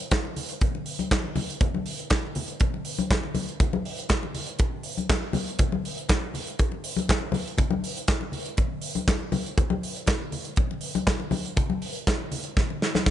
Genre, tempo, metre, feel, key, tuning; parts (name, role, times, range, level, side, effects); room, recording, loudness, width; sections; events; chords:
disco; 120 BPM; 4/4; straight
modern studio drum kit; drums; 0.0-13.1 s; handclaps, hi-hat, kick drum, snare drum; -25 LUFS; equal
congas; percussion; 0.1-13.1 s; -30 LUFS; left 4 dB
little or no reverb; nothing above 10.4 kHz; -24 LUFS; side -11 dB against mid
0.0-13.1 A section
drum fill 12.6-13.1